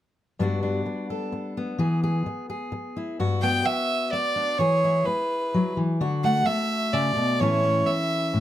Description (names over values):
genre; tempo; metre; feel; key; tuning
acoustic folk duo or small band; 128 BPM; 3/4; straight; unclear; A4 = 440 Hz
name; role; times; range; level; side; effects
fingerpicked steel-string acoustic guitar; accompaniment; 0.4-8.4 s; G2 to A4; -25 LUFS; left 2 dB; none
clear fiddle; melody; 3.4-8.4 s; B4 to G5; -23 LUFS; right 2 dB; none
room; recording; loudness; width
light reverb; close, detailed microphones; -22 LUFS; side -12 dB against mid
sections
0.4-3.2 A section; 3.2-8.4 B section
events
none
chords
0.4 Gmaj7; 1.8 E; 3.2 Gmaj7; 4.6 E; 6.0 Dadd9; 7.4 A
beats
| 0.39 0.86 1.32 | 1.79 2.26 2.73 | 3.20 3.66 4.13 | 4.60 5.07 5.53 | 6.00 6.46 6.93 | 7.40 7.87 8.33